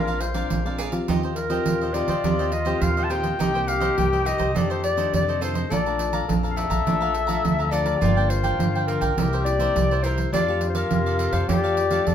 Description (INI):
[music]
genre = samba and choro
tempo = 104 BPM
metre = 4/4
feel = straight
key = F major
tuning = A4 = 439 Hz
[part]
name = clear clarinet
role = melody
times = 0.0-12.1 s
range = Bb4 to A5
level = -26 LUFS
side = left 3 dB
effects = none
[part]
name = bright trombone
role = second line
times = 0.0-12.1 s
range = F4 to A4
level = -28 LUFS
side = left 5 dB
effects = none
[part]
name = cavaquinho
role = accompaniment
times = 0.0-12.1 s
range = D4 to Bb5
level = -31 LUFS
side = right 4 dB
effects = none
[part]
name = nylon-string guitar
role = accompaniment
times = 0.0-12.1 s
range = F2 to G4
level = -29 LUFS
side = left 3 dB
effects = none
[part]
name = upright bass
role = bass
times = 0.0-12.1 s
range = G1 to F2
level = -26 LUFS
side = right 1 dB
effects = none
[part]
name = pandeiro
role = percussion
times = 0.1-12.1 s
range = none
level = -27 LUFS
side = right 5 dB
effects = none
[sound]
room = moderate studio reverb, RT60 0.6 s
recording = minimal, uncompressed stereo recording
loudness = -20 LUFS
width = side -9 dB against mid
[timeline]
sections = 0.0-12.1 A section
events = none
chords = 0.0 Bb9; 1.1 Eb69; 3.4 Cm7; 4.5 F13; 5.7 Bbmaj7; 8.0 Gm7; 9.2 C7; 10.3 F69